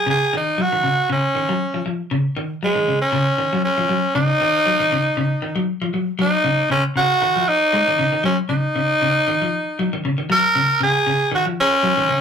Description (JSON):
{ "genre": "afrobeat", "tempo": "117 BPM", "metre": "4/4", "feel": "swing 54% on 16ths", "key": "Eb minor", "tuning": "A4 = 438 Hz", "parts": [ { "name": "raspy tenor saxophone", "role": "melody", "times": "0.0-12.2 s", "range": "Ab3 to Bb4", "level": "-17 LUFS", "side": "right 1 dB", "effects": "none" }, { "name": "clean electric guitar", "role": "arpeggios", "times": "0.1-12.2 s", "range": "Db3 to Ab3", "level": "-22 LUFS", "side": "left 2 dB", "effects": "none" } ], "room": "wet small room reverb, RT60 0.5 s", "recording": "rough rehearsal-room recording, warm saturation", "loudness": "-16 LUFS", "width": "side -7 dB against mid", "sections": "0.0-6.2 A section; 6.2-12.2 B section", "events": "none", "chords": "0.0 Ebm7" }